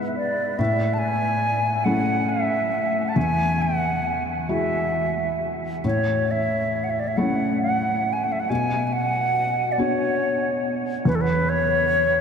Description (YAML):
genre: celtic folk, Celtic slow air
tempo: 46 BPM (dotted quarters)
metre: 6/8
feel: rubato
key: A major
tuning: A4 = 440 Hz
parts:
  - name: felt-muted upright piano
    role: accompaniment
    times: 0.0-12.2 s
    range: E2 to F#4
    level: -24 LUFS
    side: left 1 dB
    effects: none
  - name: bright wooden flute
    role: melody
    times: 0.2-12.2 s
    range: A4 to A5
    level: -22 LUFS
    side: equal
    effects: analog delay
room: wet huge ambient reverb, RT60 7.8 s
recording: dreamy mix soaked in reverb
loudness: -20 LUFS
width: side -6 dB against mid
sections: 0.0-12.2 A section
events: none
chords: 0.0 E/G#; 0.6 A; 3.2 Eadd9; 5.8 A; 8.5 Bm; 11.1 N.C.